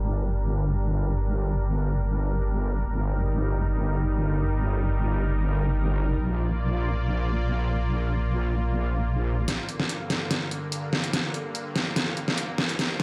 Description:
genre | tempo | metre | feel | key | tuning
heavy wobble dubstep | 145 BPM | 4/4 | half-time | G minor | A4 = 440 Hz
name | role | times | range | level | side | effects
supersaw pad | sustained chords | 0.0-13.0 s | G2 to D5 | -34 LUFS | equal | none
wobble bass | bass | 0.0-9.5 s | G1 to Bb1 | -27 LUFS | equal | chorus, overdrive
dubstep drum kit | drums | 9.5-13.0 s | hi-hat, snare drum | -28 LUFS | equal | none
room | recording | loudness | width
little or no reverb | played on a big sound system in a bare room, large studio reverb, high-pass filter, low-pass filter | -26 LUFS | mono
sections
0.0-9.5 A section; 9.5-13.0 B section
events
filter sweep 0.0-9.5; build-up 9.5-13.0; drum fill 9.5-13.0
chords
0.0 Gm; 2.9 Eb/G; 6.2 Bb; 9.5 Gm

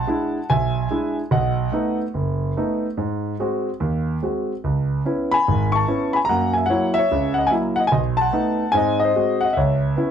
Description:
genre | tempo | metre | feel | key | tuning
solo jazz | 146 BPM | 4/4 | swing 66% on 8ths, rubato | B mixolydian | A4 = 440 Hz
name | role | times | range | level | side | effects
warm concert grand piano | solo | 0.0-10.1 s | F#1 to C#6 | -18 LUFS | equal | none
room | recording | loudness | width
moderate studio reverb, RT60 0.5 s | dark, warm production | -18 LUFS | side -8 dB against mid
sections
0.0-10.1 A section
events
none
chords
0.0 E7; 1.3 B7; 3.0 G#7; 4.6 C#m7; 6.3 F#7; 7.9 B7; 8.7 G#7; 9.6 C#m7

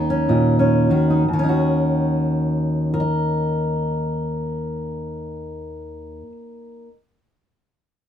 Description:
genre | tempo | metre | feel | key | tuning
folk | 59 BPM | 4/4 | swing 61% on 8ths | Eb minor | A4 = 440 Hz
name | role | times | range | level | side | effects
fingerpicked steel-string acoustic guitar | accompaniment | 0.0-6.9 s | Eb2 to Eb5 | -19 LUFS | equal | none
room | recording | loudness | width
moderate studio ambience, RT60 0.5 s | minimal, uncompressed stereo recording | -18 LUFS | side -9 dB against mid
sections
0.0-1.3 A section; 1.3-5.4 B section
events
slowing down 0.0-1.3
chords
0.0 Ebm7

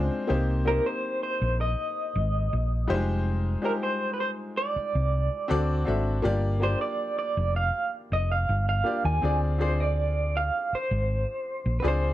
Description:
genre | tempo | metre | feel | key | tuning
lush 1970s-style soul | 81 BPM | 4/4 | straight | C minor | A4 = 440 Hz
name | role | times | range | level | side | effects
clear baby grand piano | accompaniment | 0.0-12.1 s | G3 to E5 | -31 LUFS | left 2 dB | none
hollow-body short-scale fingered electric bass | bass | 0.0-12.1 s | F1 to Eb2 | -26 LUFS | equal | none
electric guitar through a small old amp | melody | 0.7-12.1 s | Bb4 to Ab5 | -28 LUFS | right 2 dB | tremolo
room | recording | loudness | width
small room ambience | dry, close 1970s-style studio recording | -24 LUFS | side -14 dB against mid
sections
0.0-12.1 A section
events
none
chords
0.3 Cm7; 2.9 Fm9; 5.5 D7; 6.2 Gm7; 9.2 Dm7b5

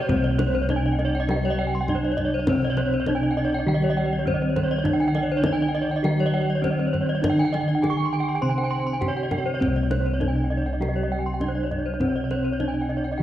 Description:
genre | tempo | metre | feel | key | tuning
Balinese gamelan | 101 BPM | 4/4 | straight | C pelog | A4 = 441 Hz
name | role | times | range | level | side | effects
gamelan-type bronze metallophone | melody | 0.0-13.2 s | C4 to C5 | -28 LUFS | right 2 dB | tape echo
gamelan-type bronze metallophone | accompaniment | 0.0-13.2 s | C3 to C4 | -30 LUFS | left 1 dB | none
gamelan-type bronze metallophone | arpeggios | 0.0-13.2 s | C5 to Db6 | -29 LUFS | right 4 dB | none
gamelan-type bossed gongs | bass | 0.0-13.2 s | C2 to D4+50c | -25 LUFS | equal | none
gamelan-type bronze metallophone | arpeggios | 0.1-13.2 s | C5 to C6 | -31 LUFS | left 5 dB | none
kendang | percussion | 0.1-13.1 s | none | -31 LUFS | left 1 dB | none
room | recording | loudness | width
moderate scoring stage reverb, RT60 1.4 s | worn, warbling old tape, cassette tape, warbly pitch drift | -21 LUFS | side -12 dB against mid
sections
0.1-13.2 A section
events
none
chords
none

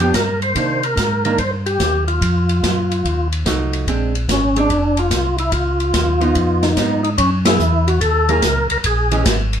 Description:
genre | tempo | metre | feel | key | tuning
soul jazz organ trio | 145 BPM | 4/4 | swing 66% on 8ths | unclear | A4 = 440 Hz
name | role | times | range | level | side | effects
percussive tonewheel organ | melody | 0.0-9.2 s | Db4 to C5 | -18 LUFS | equal | slow rotary speaker, overdrive, chorus vibrato
archtop guitar, miked and amplified | accompaniment | 0.0-9.2 s | Eb3 to G#4 | -22 LUFS | right 3 dB | none
mellow tonewheel organ | bass | 0.0-9.6 s | F1 to C3 | -19 LUFS | equal | slow rotary speaker
open jazz drum kit | drums | 0.0-9.6 s | hi-hat, kick drum, ride cymbal, snare drum | -21 LUFS | equal | none
room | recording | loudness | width
wet studio reverb, RT60 0.7 s | band playing live in one room | -15 LUFS | side -8 dB against mid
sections
0.0-7.2 A section; 7.2-9.6 B section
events
band accent 7.4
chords
0.0 G7; 0.6 Cm9; 2.2 F7b9; 3.9 Bb9; 5.5 Db9; 7.2 F#9; 8.8 A#m7b5

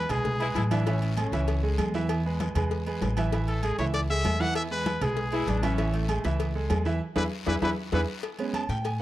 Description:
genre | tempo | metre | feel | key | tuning
latin, salsa | 195 BPM | 4/4 | straight | A major | A4 = 440 Hz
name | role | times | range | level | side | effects
bright trumpet | melody | 0.0-0.7, 3.5-8.0 s | G#4 to F#5 | -32 LUFS | left 1 dB | none
bright concert grand piano | accompaniment | 0.0-9.0 s | E3 to A5 | -30 LUFS | right 4 dB | none
upright bass | bass | 0.0-9.0 s | A1 to A2 | -28 LUFS | equal | none
agogo bells and timbales | percussion | 0.1-9.0 s | none | -38 LUFS | right 6 dB | none
congas | percussion | 0.1-9.0 s | none | -34 LUFS | left 3 dB | none
cowbell | percussion | 0.1-9.0 s | none | -39 LUFS | left 8 dB | none
guiro | percussion | 0.1-9.0 s | none | -45 LUFS | left 7 dB | none
clear saxophone section | second line | 0.4-1.7, 5.3-8.0 s | A3 to E4 | -35 LUFS | left 4 dB | none
room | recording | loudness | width
small room ambience | dry, close 1970s-style studio recording | -25 LUFS | side -14 dB against mid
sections
0.0-8.2 A section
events
band accent 7.0-8.2; drum fill 7.3-8.2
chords
0.0 E; 0.9 Amaj7; 2.1 E; 3.3 Amaj7; 4.6 E; 5.8 Amaj7; 7.0 E7; 8.2 Amaj7

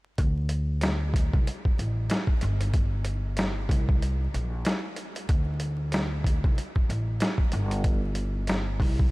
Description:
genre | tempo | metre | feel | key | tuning
hip hop, boom-bap hip-hop | 94 BPM | 4/4 | swing 58% on 16ths | unclear | A4 = 440 Hz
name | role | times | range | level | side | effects
upright bass | bass | 0.2-9.1 s | G1 to D2 | -28 LUFS | equal | none
boom bap sampler-style drum kit | drums | 0.2-9.1 s | hi-hat, kick drum, snare drum | -26 LUFS | equal | none
room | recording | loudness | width
light reverb | vinyl crackle, faint mains hum | -24 LUFS | side -21 dB against mid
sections
0.2-9.1 A section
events
none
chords
none

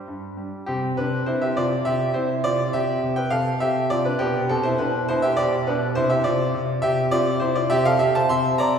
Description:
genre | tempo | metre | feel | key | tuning
classical-period piano sonatina | 102 BPM | 3/4 | straight | C major | A4 = 436 Hz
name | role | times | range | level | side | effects
clear baby grand piano | solo | 0.0-8.8 s | G2 to C6 | -20 LUFS | equal | none
room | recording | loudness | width
wet concert hall reverb, RT60 2.0 s | heard from further back in the room | -19 LUFS | side -7 dB against mid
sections
0.7-8.8 A section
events
none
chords
0.0 N.C.; 0.7 C; 2.4 Dm7/C; 4.2 G/B; 6.0 C

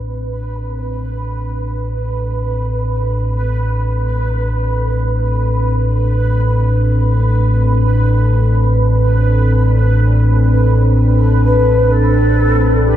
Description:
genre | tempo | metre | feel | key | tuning
dark ambient drone | free time | none | none | A minor | A4 = 440 Hz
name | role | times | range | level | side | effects
deep dark ambient pad | sustained chords | 0.0-13.0 s | C4 to A4 | -22 LUFS | left 1 dB | chorus, built-in reverb
deep rumbling drone | drone | 0.0-13.0 s | A1 to A2 | -14 LUFS | equal | built-in reverb, lush chorus
bubbling stepped-filter texture | texture | 0.0-13.0 s | B4 | -23 LUFS | right 4 dB | chorus, built-in reverb
mellow hollow shakuhachi | melody | 11.4-13.0 s | G4 to B4 | -15 LUFS | left 1 dB | tape echo
room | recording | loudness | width
wet cathedral reverb, RT60 5.1 s | none | -12 LUFS | side -11 dB against mid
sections
0.0-13.0 A section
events
fade-in on ambient pad 0.0-13.0; fade-in on synth texture 0.0-13.0; filter sweep on synth drone 0.0-13.0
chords
0.0 Amadd9

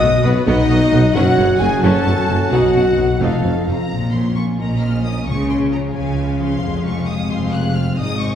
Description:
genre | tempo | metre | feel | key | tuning
cinematic | 88 BPM (dotted quarters) | 6/8 | straight | Bb minor from 3.9 s | A4 = 440 Hz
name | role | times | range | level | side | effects
rich symphonic violin section | melody | 0.0-8.3 s | B4 to Gb6 | -29 LUFS | left 3 dB | none
mellow clarinet | second line | 0.0-3.7 s | C#5 to D#5 | -30 LUFS | right 1 dB | none
mellow hollow concert flute | second line | 0.0-3.9 s | B4 to D#6 | -26 LUFS | left 2 dB | none
warm oboe | second line | 0.0-3.7 s | F#5 to A5 | -29 LUFS | right 2 dB | none
warm symphonic violin section | second line | 0.0-8.3 s | B4 to D#6 | -29 LUFS | left 2 dB | none
warm studio viola section | accompaniment | 0.0-8.3 s | Ab3 to C5 | -27 LUFS | right 1 dB | none
mellow French horn section | sustained chords | 0.0-3.9 s | B3 to D#5 | -17 LUFS | left 1 dB | none
concert harp | arpeggios | 0.0-8.3 s | F2 to Db5 | -23 LUFS | left 4 dB | none
clear symphonic double bass section | bass | 0.0-8.3 s | F1 to Db2 | -21 LUFS | right 2 dB | none
rich symphonic cello section | bass | 0.0-8.3 s | F2 to Db3 | -22 LUFS | equal | none
warm tuba | bass | 0.0-3.8 s | F1 to B1 | -23 LUFS | right 1 dB | none
room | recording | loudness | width
wet scoring stage reverb, RT60 1.5 s | heard from further back in the room | -14 LUFS | side -9 dB against mid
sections
0.0-3.9 A section; 3.9-8.3 B section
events
none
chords
0.0 B; 1.1 F#m; 2.5 B; 3.2 F7; 3.9 Bbm; 5.3 Db; 6.6 Fm

